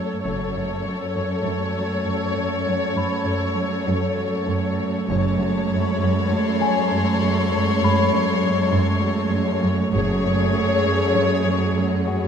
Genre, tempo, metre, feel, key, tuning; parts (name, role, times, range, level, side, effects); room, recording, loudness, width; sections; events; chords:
cinematic; 99 BPM; 4/4; straight; F# minor; A4 = 442 Hz
dark symphonic violin section; melody; 0.0-12.3 s; C#5; -25 LUFS; left 5 dB
warm studio viola section; accompaniment; 0.0-12.3 s; G#3 to A4; -25 LUFS; right 2 dB
warm chamber cello section; riff; 0.0-12.2 s; F#2 to F#3; -27 LUFS; right 2 dB
rich chamber cello section; bass; 0.0-12.3 s; F#2; -24 LUFS; right 1 dB
worn celesta; texture; 0.0-12.3 s; F#4 to B5; -28 LUFS; left 5 dB
warm chamber double bass section; bass; 0.2-0.8, 5.1-5.7, 9.9-10.5 s; F#1; -28 LUFS; right 3 dB
rich chamber violin section; texture; 5.1-9.6 s; A5 to B#5; -33 LUFS; left 1 dB
moderate scoring stage reverb, RT60 1.8 s; -19 LUFS; side -7 dB against mid
0.0-12.3 A section
0.0 F#madd9